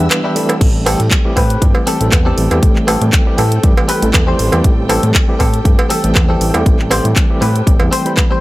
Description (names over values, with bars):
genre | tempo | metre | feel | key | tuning
nu-disco, nu disco | 119 BPM | 4/4 | swing 54% on 16ths | A minor | A4 = 440 Hz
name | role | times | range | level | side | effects
overdriven tine electric piano | accompaniment | 0.0-8.4 s | E3 to B5 | -19 LUFS | equal | fast tremolo, vintage 12-bit sampler grit, sidechain pumping, analog delay
dark studio string section | sustained chords | 0.0-8.4 s | G4 to E6 | -26 LUFS | right 2 dB | sidechain pumping
direct-recorded clean electric guitar | riff | 0.0-8.4 s | C4 to C5 | -20 LUFS | left 2 dB | lush chorus, analog delay
fat analog bass | bass | 0.0-7.9 s | A1 to A2 | -16 LUFS | equal | sidechain pumping
pop drum kit | drums | 0.1-8.3 s | crash cymbal, handclaps, hi-hat, rim click | -19 LUFS | equal | none
cowbell | percussion | 0.1-8.3 s | none | -21 LUFS | right 3 dB | none
electronic kick drum | drums | 0.6-8.3 s | none | -13 LUFS | equal | none
room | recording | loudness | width
little or no reverb | none | -10 LUFS | side -18 dB against mid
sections
0.0-8.4 A section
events
break 0.1-0.6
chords
0.0 Em7; 0.6 Am7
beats
0.11 | 0.61 1.12 1.62 2.12 | 2.63 3.13 3.64 4.14 | 4.64 5.15 5.65 6.16 | 6.66 7.17 7.67 8.17